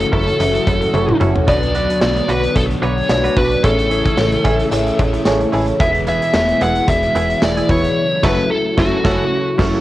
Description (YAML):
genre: 1980s-style pop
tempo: 111 BPM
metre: 4/4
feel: swing 55% on 16ths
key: F# minor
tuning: A4 = 440 Hz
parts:
  - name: biting lead guitar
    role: melody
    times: 0.0-9.8 s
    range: F#4 to F#5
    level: -18 LUFS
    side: equal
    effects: overdrive, cassette tape, plate reverb
  - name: FM electric piano with soft pad layer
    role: accompaniment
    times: 0.0-9.8 s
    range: A2 to E5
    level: -21 LUFS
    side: right 1 dB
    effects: chorus, phaser, cassette tape, plate reverb
  - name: overdriven semi-hollow guitar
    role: accompaniment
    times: 0.0-9.8 s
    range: E2 to B3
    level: -25 LUFS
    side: left 3 dB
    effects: analog chorus, cassette tape
  - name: string machine, violas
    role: sustained chords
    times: 0.0-9.8 s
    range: B2 to F#4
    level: -25 LUFS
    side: equal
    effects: ensemble chorus, cassette tape, plate reverb
  - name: direct-recorded clean electric guitar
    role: riff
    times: 0.0-9.8 s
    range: B3 to B4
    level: -26 LUFS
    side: right 4 dB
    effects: lush chorus, cassette tape
  - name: slap-like FM bass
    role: bass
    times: 0.0-9.8 s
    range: E1 to B1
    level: -21 LUFS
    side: equal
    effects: none
  - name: big rock drum kit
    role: drums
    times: 0.0-9.8 s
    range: crash cymbal, hi-hat, kick drum, snare drum, tambourine, toms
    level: -20 LUFS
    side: equal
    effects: cassette tape
  - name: shimmering bell with halo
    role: second line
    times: 4.2-5.6 s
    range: C#5 to E5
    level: -26 LUFS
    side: equal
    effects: ensemble chorus, cassette tape, tape echo, plate reverb
room: moderate booth ambience, RT60 0.2 s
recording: home recording on cassette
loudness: -13 LUFS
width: side -15 dB against mid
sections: 0.0-9.8 A section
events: drum fill 0.9-1.5; band accent 8.0-9.8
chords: 0.0 F#m7; 1.5 Bm; 3.6 Amaj7; 5.8 E; 8.0 F#m7